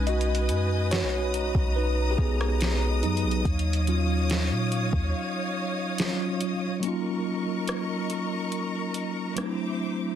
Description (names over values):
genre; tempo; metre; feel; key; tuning
contemporary R&B; 71 BPM; 4/4; straight; Eb minor; A4 = 440 Hz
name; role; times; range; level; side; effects
mellow tine electric piano; accompaniment; 0.0-10.2 s; F#3 to D#5; -28 LUFS; right 1 dB; medium stereo tremolo
rich studio string section; sustained chords; 0.0-10.2 s; Bb4 to D#6; -32 LUFS; left 2 dB; none
clean 808-style bass; bass; 0.0-5.1 s; B1 to Bb2; -26 LUFS; equal; none
smooth R&B drum kit; drums; 0.1-9.6 s; hi-hat, kick drum, rim click, snare drum; -29 LUFS; equal; none
room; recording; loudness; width
light reverb; dense, heavily limited modern master; -24 LUFS; side -10 dB against mid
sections
0.0-6.8 A section; 6.8-10.2 B section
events
tine electric piano solo 0.0-6.8; break 5.1-6.8, 6.8-10.2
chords
0.0 B6; 3.5 Ebm9; 6.8 Ebm7; 9.4 D9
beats
| 0.07 0.92 1.76 2.60 | 3.45 4.30 5.14 5.99 | 6.83 7.68 8.52 9.37